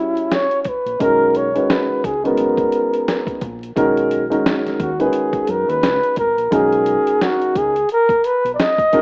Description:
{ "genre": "hip hop, jazz-hop", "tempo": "87 BPM", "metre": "4/4", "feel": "swing 58% on 16ths", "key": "B major", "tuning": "A4 = 441 Hz", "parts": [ { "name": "breathy flugelhorn", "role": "melody", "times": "0.0-9.0 s", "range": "E4 to D#5", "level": "-16 LUFS", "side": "equal", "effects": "none" }, { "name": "warm upright piano", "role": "accompaniment", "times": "0.0-9.0 s", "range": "D#3 to C#5", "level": "-18 LUFS", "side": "equal", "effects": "none" }, { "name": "dusty soul sampler-style drum kit", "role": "drums", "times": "0.2-9.0 s", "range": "hi-hat, kick drum, snare drum", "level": "-21 LUFS", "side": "equal", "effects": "none" }, { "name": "deep dub fingered electric bass", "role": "bass", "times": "0.9-8.6 s", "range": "F#1 to F#2", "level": "-30 LUFS", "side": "equal", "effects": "none" } ], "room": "digital ambience", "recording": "rough home demo mix, vinyl crackle, AM radio sound", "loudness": "-15 LUFS", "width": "side -34 dB against mid", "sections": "0.0-6.5 A section; 6.5-9.0 B section", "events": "none", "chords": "0.0 F#7(no3); 1.0 Bmaj9" }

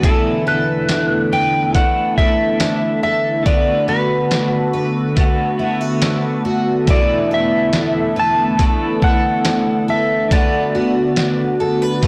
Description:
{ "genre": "dream pop", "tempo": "70 BPM", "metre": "4/4", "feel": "straight", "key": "unclear", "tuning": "A4 = 440 Hz", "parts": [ { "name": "semi-hollow electric guitar", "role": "accompaniment", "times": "0.0-12.1 s", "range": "E2 to F#4", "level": "-27 LUFS", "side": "equal", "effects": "tremolo, subtle chorus" }, { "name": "phased analog pad", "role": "sustained chords", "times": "0.0-12.1 s", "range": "D3 to A4", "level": "-23 LUFS", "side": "equal", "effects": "phaser, chorus" }, { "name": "picked twelve-string acoustic guitar", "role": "arpeggios", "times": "0.0-12.1 s", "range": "D3 to B4", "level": "-24 LUFS", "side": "equal", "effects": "subtle chorus, analog delay" }, { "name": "lo-fi sampler-style drum kit", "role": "drums", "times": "0.0-12.1 s", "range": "hi-hat, kick drum, snare drum, tambourine", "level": "-20 LUFS", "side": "equal", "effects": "none" }, { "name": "clean lap steel guitar", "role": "melody", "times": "0.1-12.1 s", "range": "A4 to A5", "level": "-21 LUFS", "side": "equal", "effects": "analog delay" } ], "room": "moderate spring reverb, RT60 1.9 s", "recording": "blown-out, overdriven recording, overdrive", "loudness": "-17 LUFS", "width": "mono", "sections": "0.0-12.1 A section", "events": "none", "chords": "0.0 E7sus4; 3.5 D6; 6.9 E7sus4; 10.3 D6" }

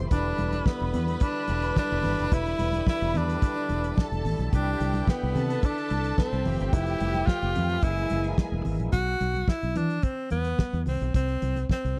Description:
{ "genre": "disco", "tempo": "109 BPM", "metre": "4/4", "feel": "straight", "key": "E phrygian", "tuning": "A4 = 441 Hz", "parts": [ { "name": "warm studio string section", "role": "second line", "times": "0.0-8.9 s", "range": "G4 to B5", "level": "-37 LUFS", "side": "equal", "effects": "none" }, { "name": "overdriven tonewheel organ", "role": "sustained chords", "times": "0.0-8.9 s", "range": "D3 to B4", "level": "-39 LUFS", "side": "equal", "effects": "chorus vibrato, slow rotary speaker" }, { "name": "fingered electric bass", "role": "bass", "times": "0.0-11.9 s", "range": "E1 to E3", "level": "-31 LUFS", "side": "equal", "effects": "none" }, { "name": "breathy tenor saxophone", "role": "melody", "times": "0.1-12.0 s", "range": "B3 to F#4", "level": "-32 LUFS", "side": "equal", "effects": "slapback echo" }, { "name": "damped 70s drum kit", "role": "drums", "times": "0.1-12.0 s", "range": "hi-hat, kick drum, snare drum", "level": "-26 LUFS", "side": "equal", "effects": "none" }, { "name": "congas", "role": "percussion", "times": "0.1-11.8 s", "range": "none", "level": "-38 LUFS", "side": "equal", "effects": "none" } ], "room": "little or no reverb", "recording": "dry, close 1970s-style studio recording", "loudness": "-27 LUFS", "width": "mono", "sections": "0.0-8.9 A section; 8.9-12.0 B section", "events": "none", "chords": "0.1 Em7; 4.5 Cmaj9; 6.5 Fmaj9#11; 7.8 F#9; 8.9 B5; 9.8 E5; 10.9 N.C." }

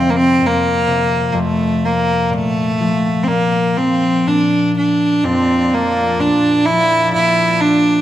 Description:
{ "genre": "celtic folk, Celtic slow air", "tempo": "62 BPM", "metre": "3/4", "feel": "rubato", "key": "unclear", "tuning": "A4 = 440 Hz", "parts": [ { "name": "clear cello", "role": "melody", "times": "0.0-8.0 s", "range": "A3 to E4", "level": "-14 LUFS", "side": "right 1 dB", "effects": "none" }, { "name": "concert harp", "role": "accompaniment", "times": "0.0-8.0 s", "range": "F2 to F3", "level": "-19 LUFS", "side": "left 3 dB", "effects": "none" }, { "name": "hand-pumped harmonium", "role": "sustained chords", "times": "5.2-8.0 s", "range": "Bb2 to D4", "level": "-25 LUFS", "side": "right 1 dB", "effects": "none" } ], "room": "wet recital hall reverb, RT60 1.7 s", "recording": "none", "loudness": "-13 LUFS", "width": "side -12 dB against mid", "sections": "0.0-8.0 A section", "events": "none", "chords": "0.0 F5; 2.3 Bb" }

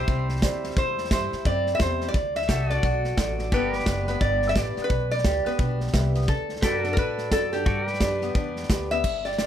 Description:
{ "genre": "honky-tonk and classic country", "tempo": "174 BPM", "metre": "4/4", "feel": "swing 62% on 8ths", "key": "G major", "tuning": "A4 = 440 Hz", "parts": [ { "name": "lap resonator guitar", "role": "melody", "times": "0.0-9.5 s", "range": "G4 to E5", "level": "-27 LUFS", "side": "equal", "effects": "none" }, { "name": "dark upright piano", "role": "accompaniment", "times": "0.0-9.0 s", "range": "F#4 to E5", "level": "-33 LUFS", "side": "right 3 dB", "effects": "none" }, { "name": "picked steel-string acoustic guitar", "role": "accompaniment", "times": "0.0-9.5 s", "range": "G2 to A4", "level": "-33 LUFS", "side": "left 4 dB", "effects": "none" }, { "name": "pedal steel guitar", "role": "sustained chords", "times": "0.0-9.0 s", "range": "F#4 to E5", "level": "-33 LUFS", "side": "equal", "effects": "none" }, { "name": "upright bass", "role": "bass", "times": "0.0-9.5 s", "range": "F#1 to A2", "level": "-28 LUFS", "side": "equal", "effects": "none" }, { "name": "natural country drum kit", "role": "drums", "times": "0.1-9.5 s", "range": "crash cymbal, hi-hat, kick drum, snare drum", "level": "-26 LUFS", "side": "equal", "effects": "none" } ], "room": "light reverb", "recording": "close, detailed microphones", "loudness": "-22 LUFS", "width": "side -10 dB against mid", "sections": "0.0-9.0 A section", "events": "none", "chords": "0.0 C; 2.1 D; 3.5 G; 6.3 D; 7.7 G" }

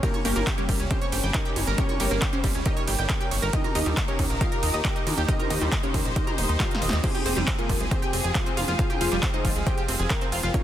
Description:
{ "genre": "uplifting trance", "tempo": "137 BPM", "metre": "4/4", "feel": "straight", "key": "F minor", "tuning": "A4 = 440 Hz", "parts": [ { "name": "wide unison pluck", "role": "melody", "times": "0.0-10.6 s", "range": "G3 to Bb5", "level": "-31 LUFS", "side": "equal", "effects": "sidechain pumping, dub echo" }, { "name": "rich studio string section", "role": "sustained chords", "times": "0.0-10.6 s", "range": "Db3 to C5", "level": "-34 LUFS", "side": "left 2 dB", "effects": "sidechain pumping" }, { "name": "analog pluck", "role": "arpeggios", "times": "0.0-10.6 s", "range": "Eb3 to G5", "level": "-31 LUFS", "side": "right 2 dB", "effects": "lush chorus, sidechain pumping, dub echo" }, { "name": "big-room dance drum kit", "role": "drums", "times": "0.0-10.6 s", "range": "crash cymbal, handclaps, hi-hat, ride cymbal, snare drum, toms", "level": "-30 LUFS", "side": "right 1 dB", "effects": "overdrive, sidechain pumping on hats, sidechain pumping on toms, sidechain pumping on cymbals" }, { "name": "electronic kick drum", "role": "drums", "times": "0.0-10.6 s", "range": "none", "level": "-26 LUFS", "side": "equal", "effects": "overdrive" }, { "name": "plucky analog bass", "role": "bass", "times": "0.3-10.5 s", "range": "Eb1 to Eb2", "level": "-28 LUFS", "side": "equal", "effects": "sidechain pumping" } ], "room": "little or no reverb", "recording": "dense, heavily limited modern master", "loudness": "-22 LUFS", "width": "side -11 dB against mid", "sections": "0.0-10.6 A section", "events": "drum fill 6.6-7.0", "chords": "0.0 Gdim; 3.5 Eb; 7.0 Fmadd9" }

